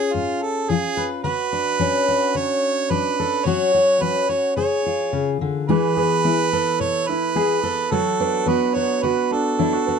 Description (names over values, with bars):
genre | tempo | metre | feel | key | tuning
acoustic folk duo or small band | 108 BPM | 4/4 | straight | unclear | A4 = 440 Hz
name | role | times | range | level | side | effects
clear harmonica | second line | 0.0-10.0 s | E#4 to C#5 | -22 LUFS | right 6 dB | none
fingerpicked steel-string acoustic guitar | accompaniment | 0.0-10.0 s | G#2 to B4 | -22 LUFS | left 5 dB | none
bright upright piano | arpeggios | 5.7-10.0 s | E3 to G#4 | -23 LUFS | right 6 dB | none
room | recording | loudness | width
light reverb | nothing above 10.8 kHz | -18 LUFS | side -6 dB against mid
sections
0.0-10.0 A section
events
none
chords
0.0 C#; 1.2 Bmadd9/D; 3.5 C#sus4; 4.6 C#; 5.7 E; 7.9 Bm/D